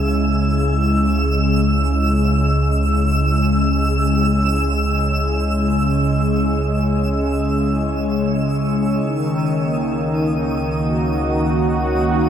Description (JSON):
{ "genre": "ambient", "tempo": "free time", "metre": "none", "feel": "none", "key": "C# dorian", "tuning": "A4 = 441 Hz", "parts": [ { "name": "warm analog pad", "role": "sustained chords", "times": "0.0-12.3 s", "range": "C#3 to F#4", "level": "-18 LUFS", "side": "equal", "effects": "chorus" }, { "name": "warm sub bass", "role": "bass", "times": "0.0-12.3 s", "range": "C#2", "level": "-22 LUFS", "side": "equal", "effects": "none" }, { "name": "analog drone", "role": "drone", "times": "0.0-12.3 s", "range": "C#3 to C#4", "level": "-27 LUFS", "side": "right 1 dB", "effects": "chorus" }, { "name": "twinkling granular texture", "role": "texture", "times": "0.0-12.3 s", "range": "D#6 to E6", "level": "-25 LUFS", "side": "right 1 dB", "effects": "built-in reverb" } ], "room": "moderate shimmer reverb, RT60 8.7 s", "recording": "none", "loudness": "-16 LUFS", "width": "side -9 dB against mid", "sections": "0.0-12.3 A section", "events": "fade-in on synth drone 0.0-12.3; fade-out on synth texture 0.0-12.3", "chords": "0.0 C#m; 9.0 D#m7/C#" }